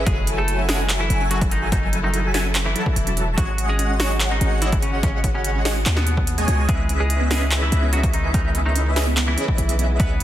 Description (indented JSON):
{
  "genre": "future bass",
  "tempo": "145 BPM",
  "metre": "4/4",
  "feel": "half-time",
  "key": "C# minor",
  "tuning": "A4 = 440 Hz",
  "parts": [
    { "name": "rich studio string section", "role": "sustained chords", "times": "0.0-10.2 s", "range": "C#3 to A4", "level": "-33 LUFS", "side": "left 1 dB", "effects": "sidechain pumping" },
    { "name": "airy dreamy lead", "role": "arpeggios", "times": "0.0-10.2 s", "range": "E5 to A5", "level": "-32 LUFS", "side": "equal", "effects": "chorus, sidechain pumping, dub echo" },
    { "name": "wide unison pluck", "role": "arpeggios", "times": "0.0-10.2 s", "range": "B3 to G#4", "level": "-34 LUFS", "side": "right 4 dB", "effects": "flanger, sidechain pumping, dub echo" },
    { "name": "supersaw stab", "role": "riff", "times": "0.0-10.2 s", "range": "F#3 to A5", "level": "-27 LUFS", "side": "equal", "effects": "phaser, cassette tape, sidechain pumping" },
    { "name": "warm 808-style bass", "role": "bass", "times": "0.0-10.2 s", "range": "E1 to D#2", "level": "-22 LUFS", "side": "equal", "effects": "sidechain pumping" },
    { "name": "semi-hollow electric guitar", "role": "melody", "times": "0.1-10.2 s", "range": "B2 to B4", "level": "-28 LUFS", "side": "left 1 dB", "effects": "sidechain pumping, ping-pong delay" },
    { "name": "big-room dance drum kit", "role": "drums", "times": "0.1-10.2 s", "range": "handclaps, hi-hat, snare drum", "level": "-25 LUFS", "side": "right 1 dB", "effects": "overdrive" },
    { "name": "electronic kick drum", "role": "drums", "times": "0.1-10.1 s", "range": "none", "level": "-22 LUFS", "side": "equal", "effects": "overdrive" }
  ],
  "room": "little or no reverb",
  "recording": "dense, heavily limited modern master",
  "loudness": "-18 LUFS",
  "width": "side -12 dB against mid",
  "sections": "0.0-10.2 A section",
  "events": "none",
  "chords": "0.1 F#m9; 3.4 G#7sus4; 6.7 C#m7"
}